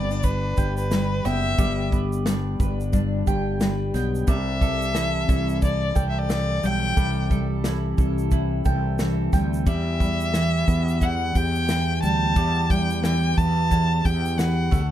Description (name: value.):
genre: acoustic pop.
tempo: 89 BPM.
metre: 4/4.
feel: swing 60% on 16ths.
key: unclear.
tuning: A4 = 443 Hz.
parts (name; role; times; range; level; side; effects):
warm violin; melody; 0.0-14.9 s; B4 to A5; -26 LUFS; equal; none.
fingerpicked steel-string acoustic guitar; accompaniment; 0.0-14.9 s; E2 to A4; -26 LUFS; left 1 dB; none.
mandolin; arpeggios; 0.0-14.9 s; G3 to G5; -35 LUFS; right 9 dB; none.
fretless electric bass; bass; 0.0-14.9 s; F#1 to E2; -25 LUFS; equal; none.
natural country drum kit; drums; 0.1-14.9 s; kick drum, shaker, snare drum; -24 LUFS; equal; none.
room: little or no reverb.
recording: none.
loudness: -20 LUFS.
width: side -11 dB against mid.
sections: 0.0-14.9 A section.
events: none.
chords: 0.0 G; 4.3 C6; 9.7 Em.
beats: 0.24 0.91 | 1.58 2.26 2.93 3.60 | 4.28 4.95 5.62 6.30 | 6.97 7.64 8.32 8.99 | 9.67 10.34 11.01 11.69 | 12.36 13.03 13.71 14.38.